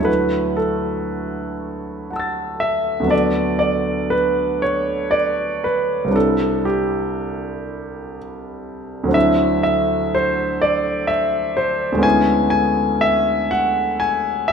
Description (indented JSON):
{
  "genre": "classical, impressionist solo piano",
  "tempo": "60 BPM",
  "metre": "3/4",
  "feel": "rubato",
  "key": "unclear",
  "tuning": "A4 = 440 Hz",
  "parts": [
    { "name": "clear concert grand piano", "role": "solo", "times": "0.0-14.5 s", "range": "C2 to A6", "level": "-17 LUFS", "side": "equal", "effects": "none" }
  ],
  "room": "moderate scoring stage reverb, RT60 1.6 s",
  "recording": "dark, warm production",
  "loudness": "-17 LUFS",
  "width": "side -6 dB against mid",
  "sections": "0.0-14.5 A section",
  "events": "none",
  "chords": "0.1 Dadd9; 3.1 D6; 6.2 Cadd9; 9.1 D9; 12.0 E6/D"
}